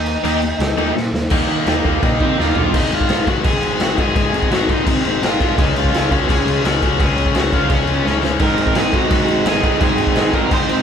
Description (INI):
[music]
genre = punk rock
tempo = 170 BPM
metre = 4/4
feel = straight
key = Ab mixolydian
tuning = A4 = 440 Hz
[part]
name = lead guitar through a small cranked amp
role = melody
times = 0.0-10.8 s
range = C4 to C6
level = -22 LUFS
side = right 2 dB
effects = overdrive
[part]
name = fuzz picked electric bass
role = bass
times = 0.0-10.8 s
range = Ab1 to Eb3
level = -23 LUFS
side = equal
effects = overdrive
[part]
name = raw garage drum kit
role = drums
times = 0.1-10.8 s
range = crash cymbal, kick drum, snare drum, toms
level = -18 LUFS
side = equal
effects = none
[part]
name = crunchy overdriven guitar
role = riff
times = 0.2-2.7, 8.4-10.8 s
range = Ab2 to G4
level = -21 LUFS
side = right 10 dB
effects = none
[part]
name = tight distorted guitar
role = riff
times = 0.2-10.8 s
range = Ab2 to Eb4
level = -20 LUFS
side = left 8 dB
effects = distortion
[sound]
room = moderate studio reverb, RT60 0.5 s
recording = band playing live in one room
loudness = -14 LUFS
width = side -8 dB against mid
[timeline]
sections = 0.0-1.3 A section; 1.3-2.7 B section; 2.7-10.8 C section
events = half time 0.0-1.3; drum fill 1.0-1.3, 2.4-2.7, 8.0-8.4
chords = 0.0 Eb; 2.7 Ab; 5.6 Db; 8.4 Ab